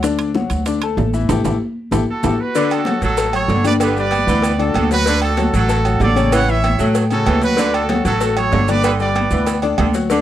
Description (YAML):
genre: latin, salsa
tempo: 191 BPM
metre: 4/4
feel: straight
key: D major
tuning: A4 = 440 Hz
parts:
  - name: bright concert grand piano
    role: accompaniment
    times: 0.0-10.2 s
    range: C#3 to B5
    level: -21 LUFS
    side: left 7 dB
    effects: none
  - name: upright bass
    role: bass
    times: 0.0-10.2 s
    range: G1 to A2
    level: -19 LUFS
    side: right 1 dB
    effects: none
  - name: bongos and cowbell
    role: percussion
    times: 0.0-10.2 s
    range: none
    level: -25 LUFS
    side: left 5 dB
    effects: none
  - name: congas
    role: percussion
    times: 0.0-10.2 s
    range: none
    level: -24 LUFS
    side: left 1 dB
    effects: none
  - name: maracas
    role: percussion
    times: 0.0-10.2 s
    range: none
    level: -35 LUFS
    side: right 11 dB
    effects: none
  - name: timbales and agogo bells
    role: percussion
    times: 0.0-9.9 s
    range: none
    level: -25 LUFS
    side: right 7 dB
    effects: none
  - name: bright trumpet section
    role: melody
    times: 2.1-9.6 s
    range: F#4 to F#5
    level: -20 LUFS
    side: right 4 dB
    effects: none
  - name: clear saxophone section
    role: second line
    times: 2.6-10.2 s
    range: D3 to F#3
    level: -23 LUFS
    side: right 4 dB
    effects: none
room: little or no reverb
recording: dry, close 1970s-style studio recording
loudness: -14 LUFS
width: side -12 dB against mid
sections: 0.0-2.5 A section; 2.5-10.2 B section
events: band accent 1.3-2.5; drum fill 1.8-2.5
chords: 0.0 D; 1.3 A5; 2.5 Dmaj7; 3.8 G; 5.1 Dmaj7; 6.3 A7; 7.6 Dmaj7; 8.8 G